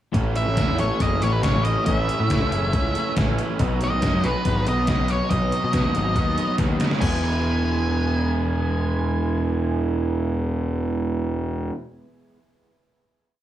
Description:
indie rock; 140 BPM; 4/4; straight; E major; A4 = 440 Hz
biting overdriven guitar; riff; 0.1-11.7 s; A2 to E4; -28 LUFS; right 6 dB; lush chorus, dub echo
twelve-string electric guitar; riff; 0.1-11.8 s; E2 to A4; -30 LUFS; left 5 dB; dub echo
fuzz picked electric bass; bass; 0.1-11.7 s; E1 to B2; -24 LUFS; equal; overdrive
detuned 8-bit digital drum machine; drums; 0.1-7.1 s; crash cymbal, hi-hat, kick drum, snare drum; -25 LUFS; equal; overdrive
octave-fuzz lead guitar; melody; 0.4-11.2 s; B4 to G#5; -27 LUFS; equal; distortion, dub echo
little or no reverb; echo-heavy mix, studio reverb; -20 LUFS; side -12 dB against mid
0.1-7.0 pre-chorus; 7.0-10.4 final chord
drum fill 6.6-7.0
0.1 A; 3.6 B; 7.0 E

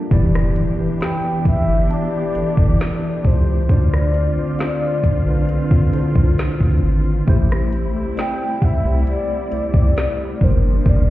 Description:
contemporary R&B; 67 BPM; 4/4; straight; E phrygian; A4 = 442 Hz
mellow tine electric piano; accompaniment; 0.0-11.1 s; D3 to Bb5; -22 LUFS; equal; medium stereo tremolo
dark studio string section; sustained chords; 0.0-11.1 s; B2 to G4; -28 LUFS; left 1 dB; stereo widening
round analog bass; bass; 0.1-11.1 s; E1 to D2; -18 LUFS; equal
smooth R&B drum kit; drums; 0.1-11.1 s; hi-hat, kick drum, rim click, snare drum; -18 LUFS; equal
impact; sound effects; 0.1-3.7 s; -26 LUFS; equal
mellow horn-like synth lead; melody; 1.0-11.1 s; C5 to G5; -24 LUFS; left 1 dB; chorus, ping-pong delay
glassy synth bell; texture; 1.0-11.0 s; D5 to D6; -38 LUFS; right 2 dB; chorus, ping-pong delay
digital ambience; heard muffled through a wall, stone room reverb, EQ; -15 LUFS; side -15 dB against mid
0.1-11.1 A section
impact 0.1-3.7
0.1 Em7; 3.7 Dm7; 7.3 Am7; 10.4 Gm7

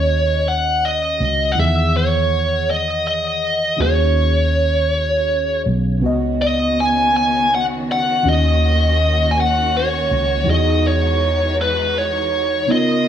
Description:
slow six-eight R&B; 54 BPM (dotted quarters); 6/8; straight; Eb minor; A4 = 440 Hz
bluesy overdriven lead guitar; melody; 0.0-13.1 s; B4 to Ab5; -18 LUFS; equal; distortion, slapback echo
mellow FM electric piano; accompaniment; 0.0-13.1 s; Db3 to F#5; -23 LUFS; equal; chorus, phaser
vintage muted fingered electric bass; bass; 0.0-13.1 s; Cb2 to E2; -20 LUFS; equal
warm symphonic string section; sustained chords; 6.0-13.1 s; Eb3 to Bb4; -26 LUFS; equal
light reverb, digital ambience; small room ambience; -15 LUFS; side -9 dB against mid
0.0-13.1 A section
0.0 Ebm7; 1.6 Emaj9; 3.8 Ebm11; 6.0 Db9sus4; 8.2 Ebm7; 10.5 Emaj9

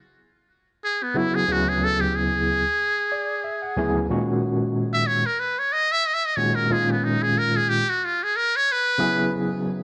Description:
jazz; 92 BPM; 4/4; swing 56% on 16ths; A4 = 440 Hz
trumpet with metal mute; melody; 0.8-9.3 s; B3 to E5; -24 LUFS; equal
overdriven tine electric piano; accompaniment; 1.1-9.8 s; D2 to G#5; -26 LUFS; equal; medium tremolo, subtle chorus
light reverb; nothing above 10.4 kHz; -23 LUFS; mono
0.0-9.8 A section
muted trumpet solo 0.0-9.8; tine electric piano fill 2.8-4.1
0.0 F#9sus4/C#; 1.5 Dmaj9; 4.1 F#69/A#; 6.7 C#add9; 9.0 F#9sus4/C#

